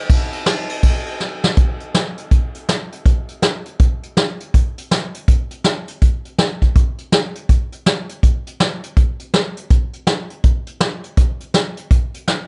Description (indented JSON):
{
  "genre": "country",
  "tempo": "162 BPM",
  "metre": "4/4",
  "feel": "swing 63% on 8ths",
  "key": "none",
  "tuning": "none",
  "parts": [
    { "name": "vintage brush drum kit", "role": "drums", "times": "0.1-12.4 s", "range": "hi-hat, kick drum, ride cymbal, snare drum", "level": "-17 LUFS", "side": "equal", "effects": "none" }
  ],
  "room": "little or no reverb",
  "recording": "nothing above 10.5 kHz",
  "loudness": "-18 LUFS",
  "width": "mono",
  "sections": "0.0-1.6 A section; 1.6-12.5 B section",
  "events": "drum fill 1.2-1.6",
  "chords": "none"
}